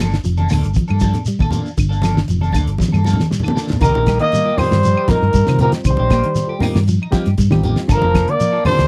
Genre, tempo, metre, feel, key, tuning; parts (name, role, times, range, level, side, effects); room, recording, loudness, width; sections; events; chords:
afrobeat; 118 BPM; 4/4; straight; C dorian; A4 = 441 Hz
mellow electric guitar; arpeggios; 0.0-8.8 s; Bb2 to Bb3; -25 LUFS; equal
clean electric guitar; stabs; 0.0-8.8 s; F3 to A4; -30 LUFS; equal; phaser
hollow-body short-scale fingered electric bass; bass; 0.0-8.9 s; F1 to C3; -19 LUFS; equal
damped 70s drum kit; drums; 0.0-8.9 s; hi-hat, kick drum, snare drum; -22 LUFS; equal
claves; percussion; 0.0-8.8 s; -34 LUFS; equal
congas; percussion; 0.0-8.9 s; -24 LUFS; equal
shekere; percussion; 0.1-8.8 s; -29 LUFS; equal
breathy trumpet; melody; 3.8-8.9 s; Bb4 to Eb5; -20 LUFS; equal
clear trombone; second line; 3.8-8.9 s; Eb3 to Bb3; -28 LUFS; equal
felt-muted upright piano; second line; 3.8-8.9 s; Bb5 to Eb6; -31 LUFS; equal
reed electric piano; accompaniment; 4.4-8.8 s; G3 to C5; -26 LUFS; equal
little or no reverb; dry, close 1970s-style studio recording; -16 LUFS; mono
0.0-3.8 A section; 3.8-8.9 B section
drum fill 2.8-3.8
0.0 Gm9; 3.8 Cm7; 7.9 Gm9